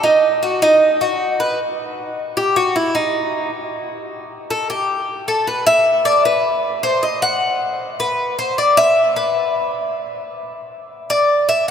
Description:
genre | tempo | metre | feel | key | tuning
latin | 154 BPM | 4/4 | straight | unclear | A4 = 440 Hz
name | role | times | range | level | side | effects
Cuban tres | solo | 0.0-11.7 s | D#4 to F#5 | -15 LUFS | equal | none
room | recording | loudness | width
wet cathedral reverb, RT60 7.2 s | recorded in a church or concert hall | -15 LUFS | side -8 dB against mid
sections
0.0-1.6 A section; 1.6-11.7 B section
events
Cuban tres solo 1.6-11.7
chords
0.0 B; 1.6 N.C.

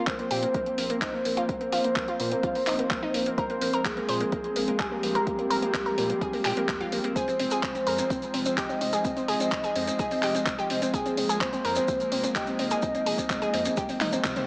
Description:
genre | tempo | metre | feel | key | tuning
progressive house | 127 BPM | 4/4 | straight | unclear | A4 = 440 Hz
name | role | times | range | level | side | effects
soft octave-layered synth lead | melody | 0.0-14.5 s | G4 to Eb5 | -29 LUFS | equal | chorus, tape echo
airy breathy pad | sustained chords | 0.0-14.5 s | F3 to C4 | -34 LUFS | equal | chorus, sidechain pumping
analog pluck | arpeggios | 0.0-14.4 s | Bb3 to C5 | -29 LUFS | equal | chorus, sidechain pumping, tape echo
saturated sub bass | bass | 0.1-14.4 s | F1 to Bb2 | -40 LUFS | equal | sidechain pumping
deep house drum kit | drums | 0.1-14.5 s | handclaps, hi-hat, toms | -32 LUFS | equal | overdrive, sidechain pumping on hats, sidechain pumping on toms
electronic kick drum | drums | 0.1-14.3 s | none | -34 LUFS | equal | overdrive
maracas | percussion | 7.2-14.5 s | none | -38 LUFS | equal | none
room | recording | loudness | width
light reverb, digital ambience | small speaker sound | -24 LUFS | side -28 dB against mid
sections
0.0-14.5 A section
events
drum fill 14.0-14.5; band accent 14.2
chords
0.0 Bbsus2; 7.2 Fm

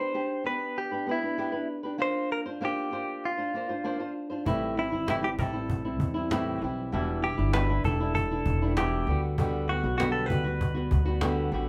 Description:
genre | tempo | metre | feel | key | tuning
acoustic pop | 98 BPM | 4/4 | straight | G major | A4 = 440 Hz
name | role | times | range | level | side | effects
direct-recorded clean electric guitar | melody | 0.0-11.5 s | E4 to C5 | -34 LUFS | equal | none
flamenco guitar | accompaniment | 0.0-11.7 s | E2 to C5 | -33 LUFS | equal | none
upright bass | bass | 4.5-11.7 s | E1 to E2 | -32 LUFS | equal | none
cajon | drums | 4.5-11.5 s | none | -34 LUFS | equal | none
room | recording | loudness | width
moderate studio ambience, RT60 0.5 s | band playing live in one room | -29 LUFS | mono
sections
0.0-4.5 A section; 4.5-11.7 B section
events
none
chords
0.0 G/B; 2.0 Bbadd9; 4.5 Am7; 6.9 Em7; 9.1 Gmaj7

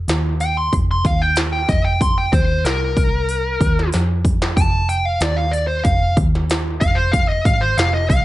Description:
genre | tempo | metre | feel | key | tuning
blues rock power trio and southern rock | 94 BPM | 4/4 | straight | unclear | A4 = 440 Hz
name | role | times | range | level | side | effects
vintage muted picked electric bass | bass | 0.0-8.2 s | F1 to F2 | -20 LUFS | equal | none
industrial drum kit | drums | 0.1-8.2 s | hi-hat, kick drum, snare drum | -19 LUFS | equal | none
smooth overdriven lead guitar | melody | 0.4-8.2 s | Bb4 to C6 | -20 LUFS | equal | slapback echo
room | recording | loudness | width
light reverb | nothing above 11.0 kHz | -15 LUFS | side -16 dB against mid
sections
0.0-8.2 A section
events
lead electric guitar solo 0.0-8.2; drum fill 3.9-4.6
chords
0.0 Cmadd11 (rootless); 2.0 F7sus4; 4.6 F5

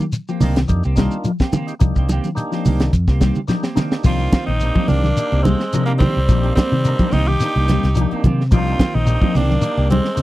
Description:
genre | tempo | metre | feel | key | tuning
afrobeat | 108 BPM | 4/4 | straight | C minor | A4 = 442 Hz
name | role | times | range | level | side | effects
mellow electric guitar | arpeggios | 0.0-10.1 s | Eb3 to G3 | -24 LUFS | left 5 dB | warbly pitch drift
clean electric guitar | stabs | 0.0-10.1 s | Eb3 to G4 | -26 LUFS | right 4 dB | lush chorus
congas | percussion | 0.0-10.1 s | none | -21 LUFS | right 2 dB | none
shekere | percussion | 0.0-10.2 s | none | -23 LUFS | left 2 dB | none
tight funk drum kit | drums | 0.1-10.2 s | crash cymbal, hi-hat, kick drum, snare drum | -18 LUFS | equal | none
percussive tonewheel organ | accompaniment | 0.4-10.2 s | Bb3 to Bb4 | -28 LUFS | equal | slow rotary speaker
fingered electric bass | bass | 0.4-10.2 s | Bb1 to C3 | -18 LUFS | equal | none
raspy tenor saxophone | melody | 4.1-10.2 s | Bb3 to G4 | -23 LUFS | equal | none
raspy alto saxophone | second line | 4.1-10.2 s | G3 to Eb4 | -29 LUFS | right 4 dB | none
room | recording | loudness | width
little or no reverb | dry, close 1970s-style studio recording | -15 LUFS | side -16 dB against mid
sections
0.0-4.1 A section; 4.1-10.2 B section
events
drum fill 3.5-4.1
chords
0.0 Cm7

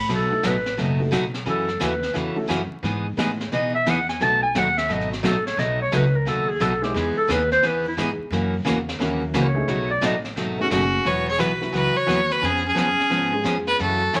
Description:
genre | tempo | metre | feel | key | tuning
country, western swing | 175 BPM | 4/4 | swing 64% on 8ths | E major | A4 = 439 Hz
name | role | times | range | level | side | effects
upright bass | bass | 0.0-14.2 s | E1 to B2 | -30 LUFS | equal | none
mellow clarinet | second line | 0.1-14.2 s | C#4 to A5 | -26 LUFS | equal | none
picked steel-string acoustic guitar | accompaniment | 0.1-14.2 s | B2 to B4 | -28 LUFS | equal | none
vintage brush drum kit | drums | 0.1-14.2 s | brushed snare drum, hi-hat, snare drum | -34 LUFS | equal | none
dark upright piano | accompaniment | 0.3-4.4, 6.8-13.8 s | F#3 to B4 | -32 LUFS | equal | none
clear fiddle | melody | 10.6-14.2 s | F#4 to C#5 | -24 LUFS | equal | none
room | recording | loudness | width
moderate club reverb, RT60 0.8 s | vinyl crackle | -22 LUFS | mono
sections
0.1-11.1 A section; 11.1-14.2 B section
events
clarinet solo 0.1-11.1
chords
0.1 B7; 1.5 F#m7; 2.8 Emaj7; 4.2 B7; 6.9 Emaj7; 8.3 F#7; 9.7 B13; 11.1 Esus2; 12.4 C#7/E#

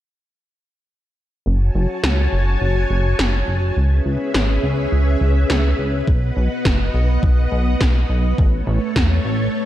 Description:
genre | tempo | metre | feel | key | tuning
synthwave | 104 BPM | 4/4 | straight | F# dorian | A4 = 440 Hz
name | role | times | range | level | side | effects
string machine, full ensemble | sustained chords | 1.5-9.7 s | A3 to A5 | -23 LUFS | equal | ensemble chorus, sidechain pumping
chorused synth bass | bass | 1.5-9.5 s | F#1 to E2 | -17 LUFS | equal | none
electronic snare drum | drums | 2.0-9.1 s | none | -23 LUFS | equal | small room ambience
electronic kick drum | drums | 6.1-9.1 s | none | -18 LUFS | equal | overdrive, small room ambience
room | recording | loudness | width
light reverb | dark, warm production | -16 LUFS | side -13 dB against mid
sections
1.5-9.7 A section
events
filter sweep on analog synth bass 1.5-9.7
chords
1.5 F#madd9; 3.8 C#m7; 6.1 B; 8.4 Aadd9

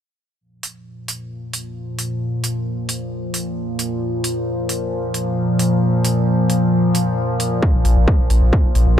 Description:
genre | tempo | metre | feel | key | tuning
driving peak-time techno | 133 BPM | 4/4 | straight | unclear | A4 = 440 Hz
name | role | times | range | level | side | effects
deep dark ambient pad | drone | 1.1-9.0 s | Bb2 to F3 | -19 LUFS | equal | chorus, built-in reverb, sidechain pumping
electronic hi-hat | drums | 0.6-8.8 s | none | -24 LUFS | right 2 dB | sidechain pumping on hats
electronic kick drum | drums | 7.6-8.6 s | none | -16 LUFS | equal | none
saturated sub bass | bass | 7.7-9.0 s | Bb1 | -15 LUFS | equal | overdrive, sidechain pumping, low-pass filter
room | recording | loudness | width
light reverb | none | -17 LUFS | side -10 dB against mid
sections
0.4-9.0 A section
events
none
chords
0.4 Bb5

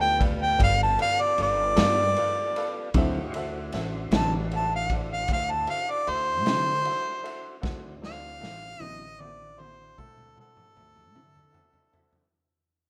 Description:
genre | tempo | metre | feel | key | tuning
slow blues | 51 BPM (dotted quarters) | 12/8 | straight | D mixolydian | A4 = 440 Hz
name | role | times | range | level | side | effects
warm harmonica | melody | 0.0-12.3 s | A4 to A5 | -28 LUFS | equal | overdrive
bright upright piano | accompaniment | 0.0-12.2 s | F#4 to A5 | -40 LUFS | equal | none
tonewheel organ | sustained chords | 0.0-12.3 s | E3 to C#5 | -43 LUFS | equal | slow rotary speaker
upright bass | bass | 0.0-11.5 s | G1 to D3 | -34 LUFS | equal | none
raw garage drum kit | drums | 0.2-12.3 s | kick drum, ride cymbal, snare drum, toms | -32 LUFS | equal | none
clean electric guitar | accompaniment | 1.8-11.4 s | D3 to A4 | -32 LUFS | equal | tremolo
room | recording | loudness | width
small room reverb | rough home demo mix | -25 LUFS | mono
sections
0.0-12.3 A section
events
fade-out 0.0-12.3; harmonica solo 0.0-12.3; drum fill 7.6-12.3; upright piano fill 11.2-12.3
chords
0.0 G9; 2.9 D9

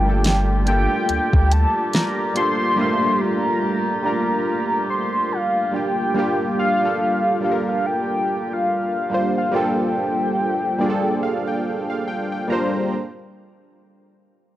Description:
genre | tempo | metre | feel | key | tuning
contemporary R&B | 71 BPM | 4/4 | swing 58% on 16ths | G minor | A4 = 440 Hz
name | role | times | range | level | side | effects
warm velvety synth lead | melody | 0.0-12.0 s | F5 to C6 | -22 LUFS | equal | chorus, tremolo, tape echo
warm analog keys | accompaniment | 0.0-12.9 s | G3 to Bb5 | -22 LUFS | right 1 dB | chorus
warm woodwind section | sustained chords | 0.0-9.5 s | G3 to G4 | -29 LUFS | right 1 dB | none
warm sub bass | bass | 0.0-1.7 s | G1 to D2 | -18 LUFS | equal | none
smooth R&B drum kit | drums | 0.2-2.6 s | hi-hat, kick drum, snare drum | -19 LUFS | equal | none
room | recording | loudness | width
little or no reverb | dry, gritty hardware recording, transformer saturation, cassette tape | -18 LUFS | side -14 dB against mid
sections
0.0-12.9 A section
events
synth keys fill 10.4-12.9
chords
0.0 Gm7

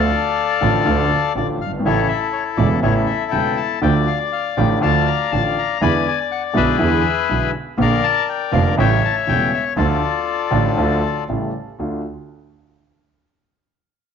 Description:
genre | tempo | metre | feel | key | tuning
tango | 121 BPM | 4/4 | rubato | D harmonic minor | A4 = 440 Hz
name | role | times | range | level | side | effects
bandoneon | melody | 0.0-11.2 s | E4 to B5 | -19 LUFS | left 9 dB | none
warm concert grand piano | accompaniment | 0.0-12.0 s | E1 to F4 | -20 LUFS | equal | none
rich double bass | bass | 0.0-12.0 s | E1 to E2 | -21 LUFS | right 5 dB | none
room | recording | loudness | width
moderate spring reverb, RT60 1.7 s, small room ambience | nothing above 7.6 kHz | -16 LUFS | side -7 dB against mid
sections
0.0-11.8 A section; 11.8-13.8 B section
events
none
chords
0.0 Dm; 1.8 A; 3.8 Dm; 5.8 E7; 7.8 Bb; 8.8 A7; 9.8 Dm; 11.3 A7; 11.8 Dm

